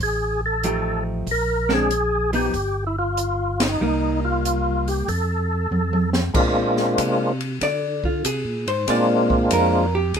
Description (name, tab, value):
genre	soul jazz organ trio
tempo	94 BPM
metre	4/4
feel	swing 67% on 8ths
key	Bb mixolydian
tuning	A4 = 441 Hz
part	percussive tonewheel organ	melody	0.0-9.9 s	Ab3 to Bb4	-21 LUFS	equal	slow rotary speaker, overdrive, chorus vibrato
part	tonewheel organ	bass	0.0-10.2 s	G1 to D3	-25 LUFS	equal	chorus vibrato
part	open jazz drum kit	drums	0.0-10.2 s	crash cymbal, hi-hat, kick drum, ride cymbal, snare drum, toms	-26 LUFS	equal	none
part	vintage hollow-body jazz guitar	accompaniment	0.6-10.2 s	F3 to D5	-24 LUFS	right 1 dB	none
room	light reverb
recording	minimal, uncompressed stereo recording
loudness	-19 LUFS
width	side -7 dB against mid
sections	0.0-6.3 A section; 6.3-10.2 B section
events	band accent 3.5-3.8; drum fill 5.7-6.3; hollow-body jazz guitar solo 6.3-10.2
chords	0.0 F9; 1.3 Bb9; 2.5 Ebadd9/G; 3.8 Cm7; 5.1 F; 6.3 Bb9